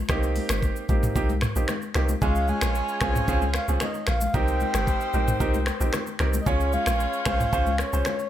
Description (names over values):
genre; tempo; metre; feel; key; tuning
afrobeats; 113 BPM; 4/4; straight; C phrygian; A4 = 439 Hz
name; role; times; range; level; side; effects
deep log drum bass; bass; 0.0-8.0 s; G1 to Db2; -26 LUFS; equal; none
clear grand piano; accompaniment; 0.1-8.1 s; Ab3 to Db5; -29 LUFS; right 4 dB; none
afro-pop drum kit; drums; 0.1-8.3 s; finger snaps, hi-hat, kick drum, rim click, shaker, toms; -27 LUFS; equal; none
congas; percussion; 0.1-8.2 s; none; -34 LUFS; left 8 dB; none
breathy flute-like synth lead; melody; 2.2-8.3 s; Db5 to Ab5; -29 LUFS; equal; chorus, ping-pong delay
clear horn section; second line; 2.2-8.3 s; G3 to Db5; -33 LUFS; left 2 dB; none
room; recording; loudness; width
light reverb; none; -22 LUFS; side -11 dB against mid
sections
0.0-8.3 A section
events
none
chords
0.1 Cm7; 2.2 Dbmaj7; 4.3 Cm7; 6.5 Dbmaj7